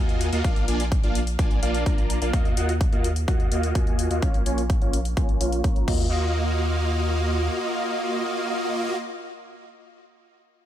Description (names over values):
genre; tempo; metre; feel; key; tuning
EDM, festival progressive house; 127 BPM; 4/4; straight; Eb minor; A4 = 441 Hz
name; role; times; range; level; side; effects
supersaw chords; riff; 0.0-9.0 s; Bb3 to Bb5; -26 LUFS; equal; sidechain pumping, low-pass filter, ping-pong delay
saturated sub bass; bass; 0.0-7.5 s; Bb1 to Eb2; -26 LUFS; equal; sidechain pumping
big-room dance drum kit; drums; 0.1-6.0 s; crash cymbal, hi-hat; -36 LUFS; left 5 dB; none
electronic kick drum; drums; 0.4-6.0 s; none; -23 LUFS; equal; none
room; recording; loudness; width
little or no reverb; none; -21 LUFS; side -12 dB against mid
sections
0.0-6.1 A section; 6.1-9.9 B section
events
filter sweep on supersaw synth 0.0-6.1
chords
0.4 Bb; 2.3 Ebmadd9; 4.2 Bbm; 5.9 Ebmadd9